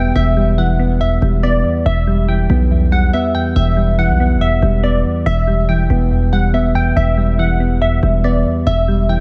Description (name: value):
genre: hip hop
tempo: 141 BPM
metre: 4/4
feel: half-time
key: E minor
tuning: A4 = 440 Hz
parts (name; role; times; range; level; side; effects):
- glassy wavetable pluck; melody; 0.0-9.2 s; D5 to G5; -22 LUFS; equal; chorus, low-pass filter, delay
- soft electric-piano-like synth keys; accompaniment; 0.0-9.2 s; E2 to B3; -19 LUFS; equal; chorus, low-pass filter
- distorted 808-style bass; bass; 0.0-9.2 s; E1 to B1; -18 LUFS; equal; distortion
room: light reverb, digital ambience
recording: none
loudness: -15 LUFS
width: mono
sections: 0.0-9.2 A section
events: none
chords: 0.0 Em